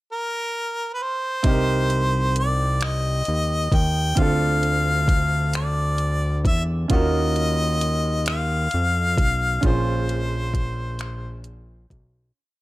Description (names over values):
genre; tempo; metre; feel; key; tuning
slow six-eight R&B; 44 BPM (dotted quarters); 6/8; straight; unclear; A4 = 440 Hz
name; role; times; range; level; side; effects
bright harmonica; melody; 0.1-11.5 s; Bb4 to G5; -25 LUFS; left 1 dB; none
bright grand piano; accompaniment; 1.4-12.4 s; C4 to C5; -29 LUFS; right 4 dB; none
smooth R&B drum kit; drums; 1.4-12.1 s; finger snaps, hi-hat, kick drum; -22 LUFS; equal; none
fat analog bass; bass; 1.5-12.3 s; Bb1 to F2; -23 LUFS; equal; none
room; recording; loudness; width
small room ambience; none; -20 LUFS; side -17 dB against mid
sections
0.0-1.4 pickup bar; 1.4-12.4 verse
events
fade-out 9.6-12.4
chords
0.0 N.C.; 1.4 Cm7; 4.2 Dm9; 6.9 Ebm9; 9.6 Bbm9